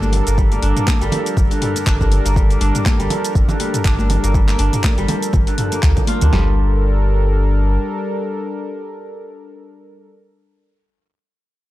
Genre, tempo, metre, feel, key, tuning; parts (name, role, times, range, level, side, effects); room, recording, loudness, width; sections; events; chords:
afro house; 121 BPM; 4/4; swing 57% on 16ths; G minor; A4 = 440 Hz
warm analog pad; sustained chords; 0.0-10.1 s; G3 to Bb4; -24 LUFS; left 1 dB; chorus, sidechain pumping
kora; arpeggios; 0.0-8.5 s; D3 to F4; -25 LUFS; right 2 dB; sidechain pumping, analog delay
warm sub bass; bass; 0.0-7.8 s; G1 to D2; -16 LUFS; equal; sidechain pumping
deep house drum kit; drums; 0.0-6.3 s; handclaps, hi-hat, shaker, toms; -24 LUFS; equal; overdrive
congas; percussion; 0.0-6.3 s; -25 LUFS; right 1 dB
deep house drum kit; drums; 0.4-6.5 s; kick drum, snare drum, toms; -17 LUFS; equal; overdrive
digital ambience; dry, gritty hardware recording; -14 LUFS; side -15 dB against mid
0.0-6.3 A section; 6.3-10.3 B section
drop 0.0-6.3
0.0 Gm7